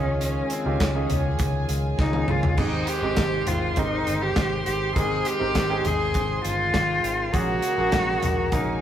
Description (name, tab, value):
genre	piano-driven pop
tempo	101 BPM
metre	4/4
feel	straight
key	Ab major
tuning	A4 = 440 Hz
part	clear cello	melody	0.0-8.8 s	C4 to Ab4	-26 LUFS	equal	none
part	warm studio violin section	second line	0.0-8.8 s	Ab4 to C6	-33 LUFS	left 1 dB	none
part	bright upright piano	accompaniment	0.0-8.8 s	Ab2 to G5	-32 LUFS	right 3 dB	none
part	tonewheel organ	sustained chords	0.0-8.8 s	Db3 to G5	-33 LUFS	equal	slow rotary speaker
part	vintage muted fingered electric bass	bass	0.0-8.8 s	G1 to Db2	-28 LUFS	equal	none
part	modern studio drum kit	drums	0.2-8.7 s	crash cymbal, hi-hat, kick drum, snare drum, toms	-26 LUFS	equal	none
room	moderate studio reverb, RT60 0.6 s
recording	rough rehearsal-room recording, warm saturation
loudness	-21 LUFS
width	side -10 dB against mid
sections	0.0-8.8 A section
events	drum fill 2.0-2.6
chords	0.0 Dbadd9; 2.6 Abmaj7; 7.3 Gbadd9/Bb